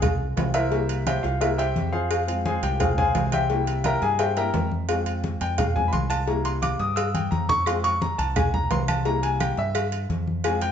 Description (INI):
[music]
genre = latin, salsa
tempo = 173 BPM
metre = 4/4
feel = straight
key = F harmonic minor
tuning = A4 = 440 Hz
[part]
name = clear baby grand piano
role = accompaniment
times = 0.0-10.7 s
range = G3 to E6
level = -25 LUFS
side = left 2 dB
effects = none
[part]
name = deep dub fingered electric bass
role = bass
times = 0.0-10.7 s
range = C2 to G2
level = -27 LUFS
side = right 1 dB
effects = none
[part]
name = agogo bells and timbales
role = percussion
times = 0.0-10.7 s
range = none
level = -31 LUFS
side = right 5 dB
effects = none
[part]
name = congas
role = percussion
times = 0.0-10.7 s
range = none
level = -29 LUFS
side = equal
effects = none
[part]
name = cowbell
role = percussion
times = 0.0-10.6 s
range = none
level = -31 LUFS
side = left 6 dB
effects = none
[part]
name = claves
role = percussion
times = 7.7-10.6 s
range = none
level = -38 LUFS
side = right 6 dB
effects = none
[sound]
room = moderate large studio reverb, RT60 1.1 s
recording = band playing live in one room, nothing above 8.0 kHz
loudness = -21 LUFS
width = side -8 dB against mid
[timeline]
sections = 0.0-10.7 A section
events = grand piano solo 0.0-10.7; drum fill 7.1-7.7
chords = 0.0 Fm; 0.7 C7; 2.1 Fm; 3.5 C7; 4.9 Fm; 6.3 C7; 7.7 Fm; 9.1 C7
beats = 0.03 0.37 | 0.72 1.07 1.42 1.76 | 2.11 2.46 2.81 3.15 | 3.50 3.85 4.19 4.54 | 4.89 5.24 5.58 5.93 | 6.28 6.62 6.97 7.32 | 7.67 8.01 8.36 8.71 | 9.05 9.40 9.75 10.10 | 10.44